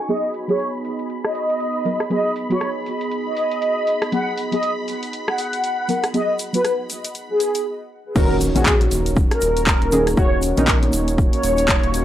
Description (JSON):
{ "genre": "deep house", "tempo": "119 BPM", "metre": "4/4", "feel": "swing 59% on 16ths", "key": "G# minor", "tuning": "A4 = 440 Hz", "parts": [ { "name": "warm analog pad", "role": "sustained chords", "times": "0.0-12.0 s", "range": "A#3 to D#5", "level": "-28 LUFS", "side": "right 1 dB", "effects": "chorus, vintage 12-bit sampler grit, sidechain pumping" }, { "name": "deep mellow chord stab", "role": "stabs", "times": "0.0-12.0 s", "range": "D#3 to A#4", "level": "-24 LUFS", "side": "equal", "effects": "chorus, cassette tape, sidechain pumping, analog delay" }, { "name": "string machine, violins", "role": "texture", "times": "0.0-7.7 s", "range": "B5 to C#6", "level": "-32 LUFS", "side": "equal", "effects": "ensemble chorus" }, { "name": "mellow horn-like synth lead", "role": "melody", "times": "0.1-12.0 s", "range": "G#4 to F#5", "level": "-22 LUFS", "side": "equal", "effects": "ensemble chorus, cassette tape, tape echo" }, { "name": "house drum kit", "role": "drums", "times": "0.1-12.0 s", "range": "crash cymbal, handclaps, hi-hat, rim click", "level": "-24 LUFS", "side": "equal", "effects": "overdrive" }, { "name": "tube shaker", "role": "percussion", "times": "0.1-12.0 s", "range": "none", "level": "-34 LUFS", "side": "right 2 dB", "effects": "none" }, { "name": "round analog bass", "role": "bass", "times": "8.2-12.0 s", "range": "D#1 to A#1", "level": "-23 LUFS", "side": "equal", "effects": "sidechain pumping" }, { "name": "electronic kick drum", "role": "drums", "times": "8.2-11.8 s", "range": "none", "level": "-18 LUFS", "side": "equal", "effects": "overdrive" }, { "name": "impact", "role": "sound effects", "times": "8.2-10.2 s", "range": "none", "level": "-29 LUFS", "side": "equal", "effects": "none" }, { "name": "congas", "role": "percussion", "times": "8.6-10.9 s", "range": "none", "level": "-27 LUFS", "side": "left 3 dB", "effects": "none" } ], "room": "digital ambience", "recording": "dry, gritty hardware recording, low-pass filter", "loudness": "-18 LUFS", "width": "side -12 dB against mid", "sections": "0.0-8.2 A section; 8.2-12.0 B section", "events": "filter sweep on analog synth pad 0.0-8.2; filter sweep 0.0-8.2; stop 7.7-8.2; drop 8.2-12.0; impact 8.2-10.2", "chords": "0.1 G#m7; 8.2 D#m7", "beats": "| 0.09 0.59 1.10 1.60 | 2.11 2.61 3.12 3.62 | 4.12 4.63 5.13 5.64 | 6.14 6.64 7.15 7.65 | 8.16 8.66 9.17 9.67 | 10.17 10.68 11.18 11.69" }